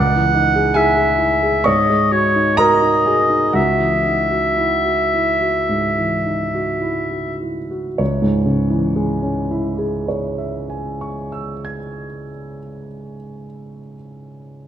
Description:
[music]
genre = classical, impressionist duo for oboe and grand piano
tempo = 50-74 BPM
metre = 4/4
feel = rubato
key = C# minor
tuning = A4 = 441 Hz
[part]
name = warm oboe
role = melody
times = 0.0-7.4 s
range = C#5 to F#5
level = -17 LUFS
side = left 1 dB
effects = none
[part]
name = dark concert grand piano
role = accompaniment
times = 0.0-14.7 s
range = C#2 to G#6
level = -19 LUFS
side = right 1 dB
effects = none
[sound]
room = moderate scoring stage reverb, RT60 2.0 s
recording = none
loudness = -15 LUFS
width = side -10 dB against mid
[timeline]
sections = 0.0-8.0 A section; 8.0-12.5 B section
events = slowing down 0.0-8.0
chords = 0.0 C#madd9; 1.7 G#7sus4; 3.6 C#madd9; 8.0 C#m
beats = 0.78 1.67 2.58 | 3.56 4.61 5.69 6.82 | 7.99 9.13 10.25 11.36

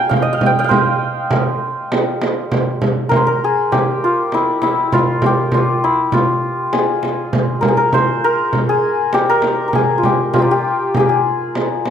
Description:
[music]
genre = Persian modal ensemble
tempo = 100 BPM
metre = 4/4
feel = straight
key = F avaz esfahan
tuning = A4 = 438 Hz
[part]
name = santur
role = melody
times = 0.0-11.9 s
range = E4 to Bb5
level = -16 LUFS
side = left 1 dB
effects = none
[part]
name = frame drum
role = percussion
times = 0.1-11.9 s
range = none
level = -18 LUFS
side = right 2 dB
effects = none
[sound]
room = light reverb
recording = close, detailed microphones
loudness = -14 LUFS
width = side -8 dB against mid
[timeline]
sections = 0.0-2.5 A section; 2.5-11.9 B section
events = none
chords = none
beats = | 0.10 0.70 1.30 1.90 | 2.50 3.11 3.71 4.31 | 4.91 5.51 6.12 6.72 | 7.33 7.93 8.53 9.14 | 9.74 10.34 10.95 11.55

